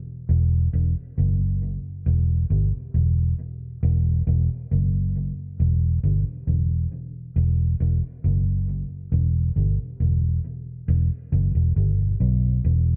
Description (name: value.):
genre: reggae.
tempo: 68 BPM.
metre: 4/4.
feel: straight.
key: E minor.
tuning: A4 = 440 Hz.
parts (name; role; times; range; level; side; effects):
vintage muted fingered electric bass; solo; 0.3-13.0 s; E1 to B1; -23 LUFS; equal; analog delay.
room: little or no reverb.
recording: echo-heavy mix.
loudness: -23 LUFS.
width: mono.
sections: 0.0-10.9 A section; 10.9-13.0 B section.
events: none.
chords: none.